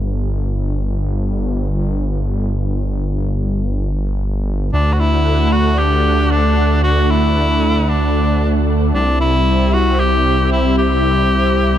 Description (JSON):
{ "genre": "synthwave", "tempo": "free time", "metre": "none", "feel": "none", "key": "unclear", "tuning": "A4 = 440 Hz", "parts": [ { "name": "wide detuned saw bass", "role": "bass", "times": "0.0-11.8 s", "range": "G1 to D2", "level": "-16 LUFS", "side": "equal", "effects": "chorus, tube saturation" }, { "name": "clear tenor saxophone", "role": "melody", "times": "4.7-11.8 s", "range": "D4 to G4", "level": "-18 LUFS", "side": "left 1 dB", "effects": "ping-pong delay" }, { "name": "analog string pad", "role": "sustained chords", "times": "4.7-11.8 s", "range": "G3 to F#5", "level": "-18 LUFS", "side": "equal", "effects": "ensemble chorus" } ], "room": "light reverb, small room ambience", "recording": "none", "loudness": "-14 LUFS", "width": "side -11 dB against mid", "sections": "0.0-11.8 A section", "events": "none", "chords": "0.0 N.C.; 4.7 D; 8.9 C", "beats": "free time" }